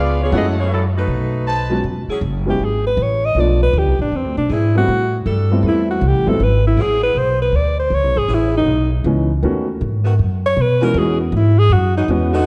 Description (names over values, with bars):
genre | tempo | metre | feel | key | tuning
jazz, big band swing | 158 BPM | 4/4 | swing 64% on 8ths | E major | A4 = 442 Hz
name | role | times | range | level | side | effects
dark saxophone section | melody | 0.0-1.7 s | F#3 to D#5 | -24 LUFS | equal | none
clear trumpet section | stabs | 0.0-1.8 s | A4 to A5 | -28 LUFS | equal | none
upright bass | bass | 0.0-12.5 s | E1 to B2 | -20 LUFS | equal | none
warm grand piano | accompaniment | 0.3-6.4, 9.1-12.3 s | D#3 to F#4 | -24 LUFS | equal | none
warm saxophone section | sustained chords | 2.1-2.2, 4.5-12.5 s | D3 to A4 | -29 LUFS | equal | none
clear alto saxophone | melody | 2.5-12.5 s | B3 to D#5 | -20 LUFS | equal | none
room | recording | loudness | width
moderate concert hall reverb, RT60 2.0 s | dark, warm production | -17 LUFS | mono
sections
0.0-1.8 A section; 1.8-12.5 B section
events
alto saxophone solo 1.8-12.5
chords
0.3 F#m7; 1.1 B7b9; 1.8 E69; 3.4 Bm7b5; 4.1 E7b13; 4.9 Am9; 6.4 G#7alt; 7.9 C#m7; 9.4 B7; 11.0 E69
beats
| 0.33 0.71 1.09 1.47 | 1.85 2.23 2.60 2.98 | 3.37 3.75 4.12 4.50 | 4.88 5.26 5.64 6.02 | 6.40 6.78 7.16 7.54 | 7.92 8.30 8.68 9.06 | 9.44 9.82 10.20 10.58 | 10.96 11.33 11.71 12.09